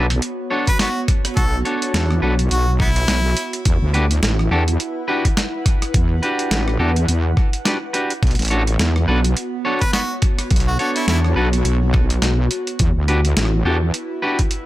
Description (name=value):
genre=glitch hop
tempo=105 BPM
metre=4/4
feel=swing 58% on 16ths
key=B minor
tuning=A4 = 438 Hz
part: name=clean electric guitar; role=stabs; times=0.0-14.4 s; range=D4 to C#5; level=-23 LUFS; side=equal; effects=sidechain pumping, digital delay
part: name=wobble bass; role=bass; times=0.0-13.9 s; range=A1 to E2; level=-17 LUFS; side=equal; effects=chorus
part: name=airy breathy pad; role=texture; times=0.0-14.7 s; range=B3 to F#5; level=-27 LUFS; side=right 1 dB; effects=chorus, sidechain pumping
part: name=boom bap sampler-style drum kit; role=drums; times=0.1-14.6 s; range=hi-hat, rim click, snare drum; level=-23 LUFS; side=right 1 dB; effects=overdrive
part: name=clear harmonica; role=melody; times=0.7-3.6, 9.8-11.2 s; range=B3 to B4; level=-25 LUFS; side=equal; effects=digital delay
part: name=electronic kick drum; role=drums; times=0.7-14.5 s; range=none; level=-17 LUFS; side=equal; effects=overdrive
room=little or no reverb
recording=none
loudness=-16 LUFS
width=side -16 dB against mid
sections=0.0-14.7 A section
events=none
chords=0.0 Bm9; 3.7 Em7; 8.2 Bm9; 12.8 Em7